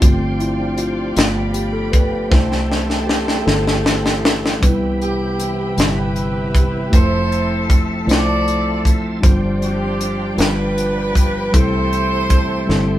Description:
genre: slow gospel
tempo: 52 BPM (dotted quarters)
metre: 6/8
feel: straight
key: C major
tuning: A4 = 440 Hz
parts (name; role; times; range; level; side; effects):
- mellow tine electric piano; accompaniment; 0.0-13.0 s; G2 to C5; -20 LUFS; left 1 dB; none
- bright tonewheel organ; sustained chords; 0.0-13.0 s; C3 to E5; -29 LUFS; right 1 dB; slow rotary speaker, overdrive, chorus vibrato
- dark studio string section; sustained chords; 0.0-13.0 s; G4 to C6; -30 LUFS; right 2 dB; none
- fingered electric bass; bass; 0.0-13.0 s; F1 to C2; -23 LUFS; equal; none
- tight funk drum kit; drums; 0.0-12.9 s; hi-hat, kick drum, snare drum; -15 LUFS; equal; none
- warm horn section; melody; 5.0-13.0 s; B3 to D5; -22 LUFS; right 1 dB; none
room: moderate studio reverb, RT60 0.7 s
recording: band playing live in one room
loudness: -15 LUFS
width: side -13 dB against mid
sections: 0.0-4.6 A section; 4.6-13.0 B section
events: tine electric piano solo 0.0-4.6; drum fill 2.3-4.6, 12.7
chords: 0.0 G7sus4; 1.2 G7; 2.3 C6; 4.6 Cmaj7; 6.9 Fmaj7; 9.2 G7sus4; 10.4 G7; 11.5 C6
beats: | 0.02 1.17 | 2.32 3.47 | 4.62 5.77 | 6.93 8.08 | 9.23 10.38 | 11.54 12.69

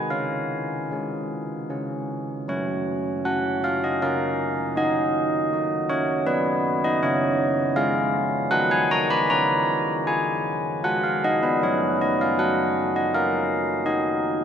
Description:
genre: classical, tune for church bells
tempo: 79 BPM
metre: 3/4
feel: straight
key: F# major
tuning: A4 = 440 Hz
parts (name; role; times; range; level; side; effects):
- carillon bells; solo; 0.0-14.4 s; F#3 to B5; -21 LUFS; equal; none
room: wet church reverb, RT60 3.8 s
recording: none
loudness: -21 LUFS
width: side -8 dB against mid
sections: 0.0-2.5 A section; 2.5-14.4 B section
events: none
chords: 0.1 C#; 2.5 F#; 4.8 D#m7; 7.0 C#; 8.5 B/D#; 9.3 C#; 11.6 F#; 13.9 B/D# (rootless)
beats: | 0.10 0.90 1.69 | 2.48 3.25 4.01 | 4.77 5.53 6.27 | 7.01 7.75 8.51 | 9.28 10.06 10.84 | 11.62 12.39 13.14 | 13.88

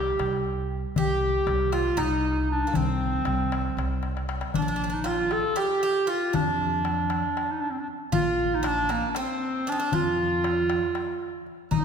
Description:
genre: Turkish makam ensemble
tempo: 234 BPM (eighths)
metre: 7/8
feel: straight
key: C makam nihavent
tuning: A4 = 439 Hz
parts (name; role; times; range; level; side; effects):
- clear clarinet; melody; 0.0-11.8 s; Bb3 to A4; -26 LUFS; right 1 dB; none
- Greek bouzouki; second line; 0.0-11.8 s; Bb3 to G4; -33 LUFS; right 4 dB; none
- upright bass; bass; 0.0-11.8 s; Bb1 to F2; -30 LUFS; equal; none
- darbuka; percussion; 0.2-11.8 s; none; -31 LUFS; left 4 dB; none
room: wet concert hall reverb, RT60 2.1 s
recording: recorded in a church or concert hall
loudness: -23 LUFS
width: side -7 dB against mid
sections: 0.0-4.5 A section; 4.5-11.8 B section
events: drum fill 4.0-4.5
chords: none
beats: 0.20 0.45 0.71 | 0.96 1.22 1.48 1.73 1.99 2.24 2.50 | 2.76 3.01 3.27 3.52 3.78 4.04 4.29 | 4.55 4.80 5.06 5.32 5.57 5.83 6.08 | 6.34 6.60 6.85 7.11 7.36 7.62 7.88 | 8.13 8.39 8.65 8.90 9.16 9.41 9.67 | 9.93 10.18 10.44 10.70 10.95 11.21 11.46 | 11.72

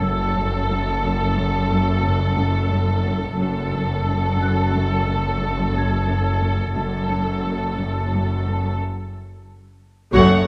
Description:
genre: cinematic, suspense film score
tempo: 89 BPM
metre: 5/4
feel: straight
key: F# minor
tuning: A4 = 442 Hz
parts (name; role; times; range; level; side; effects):
- muted studio violin section; melody; 0.0-10.5 s; A4 to F#5; -28 LUFS; equal; none
- muted symphonic cello section; riff; 0.0-10.3 s; F#2; -29 LUFS; equal; none
- muted symphonic cello section; bass; 0.0-10.5 s; F#2; -25 LUFS; equal; none
- muted symphonic double bass section; bass; 0.0-10.5 s; F#1; -28 LUFS; equal; none
- large celesta; texture; 0.0-10.2 s; E6 to G#6; -37 LUFS; equal; none
- mellow clarinet; second line; 10.1-10.5 s; F#4; -21 LUFS; equal; none
- muted chamber violin section; second line; 10.1-10.5 s; C#5; -25 LUFS; equal; none
- muted symphonic viola section; accompaniment; 10.1-10.5 s; A3; -23 LUFS; equal; none
- taiko ensemble; drums; 10.1-10.5 s; none; -28 LUFS; equal; none
room: moderate concert hall reverb, RT60 2.0 s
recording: none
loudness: -21 LUFS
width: mono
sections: 0.0-10.1 A section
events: break 8.8-10.1; band accent 10.1-10.5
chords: 0.0 F#m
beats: | 0.02 0.70 1.37 2.04 2.72 | 3.39 4.07 4.74 5.42 6.09 | 6.76 7.44 8.11 8.79 9.46 | 10.13

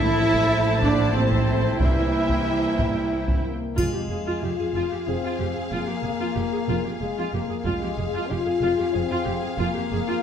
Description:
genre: cinematic, epic orchestral film score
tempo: 93 BPM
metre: 3/4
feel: straight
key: F minor from 3.8 s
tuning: A4 = 440 Hz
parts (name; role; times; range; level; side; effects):
- warm symphonic violin section; melody; 0.0-10.2 s; C5 to F5; -33 LUFS; left 5 dB; none
- dark symphonic violin section; second line; 0.0-10.2 s; Ab4 to A5; -34 LUFS; left 3 dB; none
- rich symphonic viola section; accompaniment; 0.0-10.2 s; A3 to Ab4; -29 LUFS; right 1 dB; none
- clear trombone section; sustained chords; 0.0-3.5 s; C3 to E4; -30 LUFS; right 4 dB; none
- warm French horn section; sustained chords; 0.0-10.2 s; Ab3 to F4; -28 LUFS; left 6 dB; none
- warm woodwind section; sustained chords; 0.0-3.5 s; F3 to C5; -33 LUFS; left 1 dB; none
- clear trumpet; stabs; 0.0-3.4 s; C4 to E4; -29 LUFS; equal; none
- rich chamber double bass section; bass; 0.0-10.0 s; F1 to C2; -28 LUFS; right 3 dB; none
- rich symphonic cello section; bass; 0.0-10.1 s; F2 to E4; -30 LUFS; right 3 dB; none
- timpani; percussion; 0.0-0.8, 3.8-4.7 s; F2 to A2; -33 LUFS; equal; none
- taiko ensemble; drums; 0.3-8.9 s; none; -27 LUFS; equal; none
- triangle; percussion; 3.8-5.0 s; none; -42 LUFS; left 4 dB; none
room: moderate scoring stage reverb, RT60 1.5 s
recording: none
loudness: -21 LUFS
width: side -8 dB against mid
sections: 0.0-3.8 A section; 3.8-10.2 B section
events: none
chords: 0.0 Am; 1.8 C7; 3.8 Fmadd9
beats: 0.50 1.15 | 1.80 2.46 3.12 | 3.77 4.43 5.08 | 5.72 6.37 7.01 | 7.65 8.30 8.95 | 9.60

